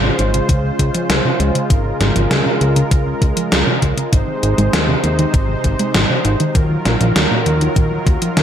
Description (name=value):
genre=synthwave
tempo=99 BPM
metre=4/4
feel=straight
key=Db major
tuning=A4 = 439 Hz
part: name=soft supersaw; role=sustained chords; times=0.0-8.4 s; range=C3 to C5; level=-20 LUFS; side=right 1 dB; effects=sidechain pumping
part: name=soft round pluck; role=arpeggios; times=0.0-8.4 s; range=Bb2 to Ab3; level=-23 LUFS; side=right 1 dB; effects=chorus, tape echo
part: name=fat analog bass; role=bass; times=0.0-8.4 s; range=Ab1 to Eb2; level=-18 LUFS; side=equal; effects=sidechain pumping
part: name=gated 80s digital drum machine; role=drums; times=0.2-8.4 s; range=hi-hat, snare drum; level=-18 LUFS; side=equal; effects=gated reverb, gated reverb snare, overdrive
part: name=electronic kick drum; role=drums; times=0.5-8.2 s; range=none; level=-16 LUFS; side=equal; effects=overdrive
room=light reverb, digital ambience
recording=none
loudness=-13 LUFS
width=side -9 dB against mid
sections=0.0-8.4 A section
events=filter sweep on synth arpeggio sound 0.0-8.4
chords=0.0 Dbmaj7; 4.1 Ab; 6.6 Ebmadd9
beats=0.49 1.10 | 1.70 2.31 2.92 3.52 | 4.13 4.73 5.34 5.95 | 6.55 7.16 7.76 8.37